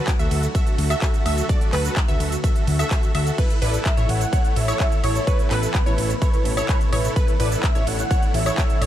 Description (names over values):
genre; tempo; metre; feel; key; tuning
EDM, festival progressive house; 127 BPM; 4/4; straight; A major; A4 = 440 Hz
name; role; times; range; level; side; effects
lush unison pad; sustained chords; 0.0-8.9 s; B2 to F#4; -31 LUFS; equal; chorus, phaser, sidechain pumping
wide unison pluck; arpeggios; 0.0-8.9 s; B4 to E5; -30 LUFS; right 1 dB; cassette tape, sidechain pumping, ping-pong delay
supersaw chords; riff; 0.0-8.9 s; E4 to E5; -29 LUFS; right 1 dB; vintage 12-bit sampler grit, sidechain pumping, ping-pong delay
big-room dance drum kit; drums; 0.1-8.9 s; crash cymbal, handclaps, hi-hat, ride cymbal, shaker, woodblock; -29 LUFS; equal; none
electronic kick drum; drums; 0.1-8.7 s; none; -20 LUFS; equal; overdrive
fat analog bass; bass; 0.2-8.9 s; A1 to D2; -22 LUFS; equal; tube saturation, sidechain pumping
breathy flute-like synth lead; melody; 3.6-8.9 s; B4 to F#5; -27 LUFS; equal; ensemble chorus, ping-pong delay
room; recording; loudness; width
digital ambience; dark, warm production; -18 LUFS; side -12 dB against mid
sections
0.0-8.9 A section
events
none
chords
0.0 D; 3.4 Asus2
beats
0.08 0.55 1.02 | 1.49 1.97 2.44 2.91 | 3.38 3.85 4.33 4.80 | 5.27 5.75 6.22 6.69 | 7.16 7.63 8.11 8.58